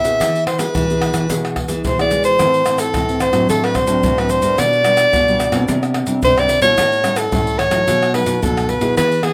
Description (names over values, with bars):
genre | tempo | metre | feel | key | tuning
samba and choro | 110 BPM | 4/4 | straight | A minor | A4 = 435 Hz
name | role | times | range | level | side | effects
clear soprano saxophone | melody | 0.0-9.3 s | G#4 to E5 | -18 LUFS | equal | plate reverb
nylon-string guitar | accompaniment | 0.0-9.3 s | F#2 to G#4 | -25 LUFS | equal | plate reverb
nylon-string guitar | bass | 0.0-9.3 s | A2 to G#3 | -25 LUFS | equal | none
tube shaker, pandeiro, surdo and tamborim | percussion | 0.0-9.3 s | none | -25 LUFS | equal | none
room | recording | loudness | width
wet small room ambience, RT60 0.5 s | rough home demo mix | -16 LUFS | mono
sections
0.0-9.3 A section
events
none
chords
0.2 E; 2.4 Am; 3.5 D7/A; 4.6 G/B; 5.7 Csus2; 6.8 A7; 7.9 B7